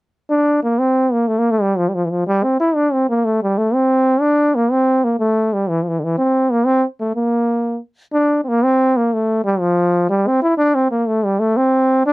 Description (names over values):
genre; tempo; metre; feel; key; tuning
celtic folk; 122 BPM (dotted quarters); 6/8; straight; unclear; A4 = 440 Hz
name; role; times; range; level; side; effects
clear trombone; solo; 0.3-12.1 s; D3 to E4; -14 LUFS; equal; none
room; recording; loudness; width
moderate booth ambience, RT60 0.2 s; dry, close 1970s-style studio recording; -14 LUFS; side -20 dB against mid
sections
0.3-8.1 A section; 8.1-12.1 A section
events
none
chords
none